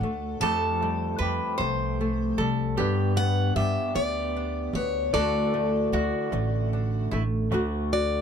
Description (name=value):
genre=acoustic folk duo or small band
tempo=51 BPM (dotted quarters)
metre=6/8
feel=straight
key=D major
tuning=A4 = 440 Hz
part: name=picked plugged-in steel-string acoustic guitar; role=melody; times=0.0-8.2 s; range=C#5 to A5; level=-29 LUFS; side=left 3 dB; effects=none
part: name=lap resonator guitar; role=second line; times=0.0-7.2 s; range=E4 to C5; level=-32 LUFS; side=right 3 dB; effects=none
part: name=nylon-string guitar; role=accompaniment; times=0.0-8.2 s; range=D2 to F#4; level=-30 LUFS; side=equal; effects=none
part: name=electric guitar through a small old amp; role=arpeggios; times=0.0-8.2 s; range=E3 to G4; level=-33 LUFS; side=equal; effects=tremolo
part: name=upright bass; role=bass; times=0.0-8.2 s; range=A1 to G2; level=-28 LUFS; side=equal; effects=none
room=light reverb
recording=close, detailed microphones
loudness=-24 LUFS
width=side -7 dB against mid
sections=0.0-7.5 A section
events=none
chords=0.4 Fadd9; 2.8 G; 5.1 Dadd9; 7.5 D